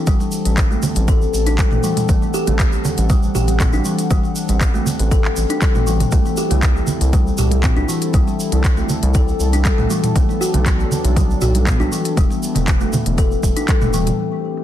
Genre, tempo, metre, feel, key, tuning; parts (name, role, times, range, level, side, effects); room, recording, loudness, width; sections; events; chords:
afro house; 119 BPM; 4/4; straight; A dorian; A4 = 440 Hz
warm analog pad; sustained chords; 0.0-14.6 s; E3 to F#5; -27 LUFS; left 2 dB; chorus, sidechain pumping
kalimba; arpeggios; 0.1-14.1 s; E3 to A4; -22 LUFS; left 1 dB; sidechain pumping, ping-pong delay
round analog bass; bass; 0.1-14.1 s; E1 to C2; -19 LUFS; equal; sidechain pumping
afro-pop drum kit; drums; 0.1-14.6 s; handclaps, hi-hat, toms; -24 LUFS; equal; low-pass filter on snare, low-pass filter on hats, low-pass filter on toms
electronic kick drum; drums; 0.1-13.8 s; -16 LUFS; equal
congas; percussion; 0.1-14.2 s; -25 LUFS; right 4 dB
egg shaker; percussion; 0.1-14.2 s; -31 LUFS; right 2 dB
digital ambience; dense, heavily limited modern master; -14 LUFS; side -12 dB against mid
0.0-14.2 A section
0.0 Am7; 6.1 C6; 10.2 Bm7; 12.2 Esus4